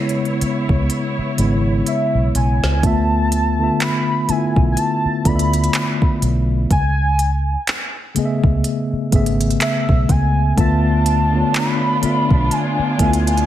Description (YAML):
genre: contemporary R&B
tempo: 62 BPM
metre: 4/4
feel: swing 58% on 16ths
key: unclear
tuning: A4 = 441 Hz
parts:
  - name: mellow tine electric piano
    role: accompaniment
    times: 0.0-13.5 s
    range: C#3 to E5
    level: -19 LUFS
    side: left 1 dB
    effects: medium stereo tremolo
  - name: muted studio string section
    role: sustained chords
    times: 0.0-2.8, 10.6-13.5 s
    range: B3 to C#5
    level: -27 LUFS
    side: equal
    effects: none
  - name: smooth R&B drum kit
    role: drums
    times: 0.1-13.5 s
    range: handclaps, hi-hat, kick drum, snare drum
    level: -20 LUFS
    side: equal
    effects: none
  - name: vintage muted fingered electric bass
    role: bass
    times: 0.4-13.4 s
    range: G#1 to D2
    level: -18 LUFS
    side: equal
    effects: none
  - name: warm velvety synth lead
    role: melody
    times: 1.9-13.5 s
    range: E5 to B5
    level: -22 LUFS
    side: equal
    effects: chorus
room: digital ambience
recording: none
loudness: -15 LUFS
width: side -12 dB against mid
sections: 0.0-2.8 A section; 2.8-13.5 B section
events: drum fill 0.9-2.8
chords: 0.0 C#m7; 2.8 Dm6; 6.7 Amaj9/C#; 10.6 Dm6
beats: 0.90 1.87 | 2.83 3.80 4.77 5.74 | 6.71 7.67 8.64 9.61 | 10.58 11.54 12.51